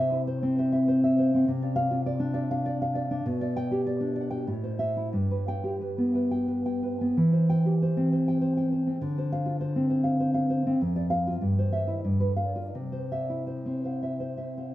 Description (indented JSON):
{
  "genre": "romantic piece for solo classical guitar",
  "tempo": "79-105 BPM",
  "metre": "3/4",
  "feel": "rubato",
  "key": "C major",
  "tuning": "A4 = 439 Hz",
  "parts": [
    { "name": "nylon-string guitar", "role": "solo", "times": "0.0-14.7 s", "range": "F2 to G5", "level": "-24 LUFS", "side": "equal", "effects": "tape echo" }
  ],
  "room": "wet studio reverb, RT60 0.8 s",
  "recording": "band playing live in one room",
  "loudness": "-24 LUFS",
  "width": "side -15 dB against mid",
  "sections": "0.0-14.7 A section",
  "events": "none",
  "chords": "0.0 C; 1.5 Dm7/C; 3.3 G/B; 4.5 Am; 5.2 G; 7.2 C/E; 9.0 Dm7; 10.8 Dm/F; 11.4 C/G; 12.0 G7; 12.8 C"
}